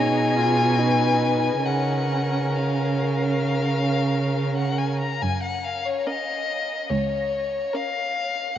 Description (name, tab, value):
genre	classical, slow romantic movement for string quartet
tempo	67-74 BPM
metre	4/4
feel	rubato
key	F# major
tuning	A4 = 440 Hz
part	rich violin	melody	0.0-8.6 s	C#5 to A#5	-25 LUFS	left 4 dB	none
part	warm violin	second line	0.0-8.4 s	G#4 to B4	-30 LUFS	left 2 dB	none
part	warm viola	accompaniment	0.0-8.4 s	C#4 to E#4	-28 LUFS	right 2 dB	none
part	rich cello	bass	0.0-7.6 s	C#2 to C#3	-24 LUFS	right 3 dB	none
room	wet huge ambient reverb, RT60 8.8 s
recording	in a vast, echoing space, nothing above 7.6 kHz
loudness	-21 LUFS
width	side -10 dB against mid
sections	0.0-8.6 A section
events	none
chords	0.0 G#m/B; 1.7 C#; 5.2 F#